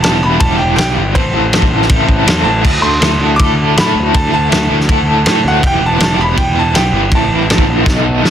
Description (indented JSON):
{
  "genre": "indie rock",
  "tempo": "161 BPM",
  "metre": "4/4",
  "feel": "straight",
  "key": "E minor",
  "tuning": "A4 = 441 Hz",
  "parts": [
    { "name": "bright upright piano", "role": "melody", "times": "0.0-8.3 s", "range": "C5 to D6", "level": "-18 LUFS", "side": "right 2 dB", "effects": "plate reverb, digital delay" },
    { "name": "overdriven electric guitar", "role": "riff", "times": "0.0-8.3 s", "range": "E3 to A4", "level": "-15 LUFS", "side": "equal", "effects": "tremolo" },
    { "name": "fuzz picked electric bass", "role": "bass", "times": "0.0-8.3 s", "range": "E1 to A2", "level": "-16 LUFS", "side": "equal", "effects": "overdrive" },
    { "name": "loose indie drum kit", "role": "drums", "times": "0.0-8.3 s", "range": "crash cymbal, kick drum, ride cymbal, snare drum", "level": "-14 LUFS", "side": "equal", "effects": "none" }
  ],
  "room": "light reverb",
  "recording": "dense, heavily limited modern master",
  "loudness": "-9 LUFS",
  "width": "side -9 dB against mid",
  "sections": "0.0-8.3 A section",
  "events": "drum fill 7.9-8.3",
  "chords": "0.0 Em; 1.2 Am; 2.6 Dsus2; 5.6 Em; 7.1 Am",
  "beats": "0.04 0.41 0.79 | 1.16 1.53 1.90 2.27 | 2.65 3.02 3.39 3.76 | 4.13 4.50 4.88 5.25 | 5.62 5.99 6.36 6.74 | 7.11 7.48 7.85 8.23"
}